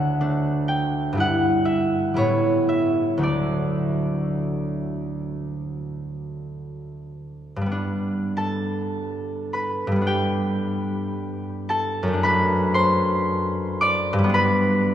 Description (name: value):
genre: classical, solo harp piece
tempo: 46-63 BPM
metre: 4/4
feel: rubato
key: D major, G major from 7.8 s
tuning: A4 = 442 Hz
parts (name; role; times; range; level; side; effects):
- concert harp; solo; 0.0-14.9 s; D2 to D6; -21 LUFS; equal; none
room: wet cathedral reverb, RT60 5.5 s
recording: heard from further back in the room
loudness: -20 LUFS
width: side -10 dB against mid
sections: 0.0-7.8 A section; 7.8-14.9 B section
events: none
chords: 0.0 D; 1.2 Em/G; 2.2 A9; 3.2 D; 7.8 G; 12.2 D7/F#; 14.4 G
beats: 0.20 1.16 2.18 | 3.24 4.33 5.45 6.58 | 7.77 8.97 10.08 11.18 | 12.24 13.30 14.37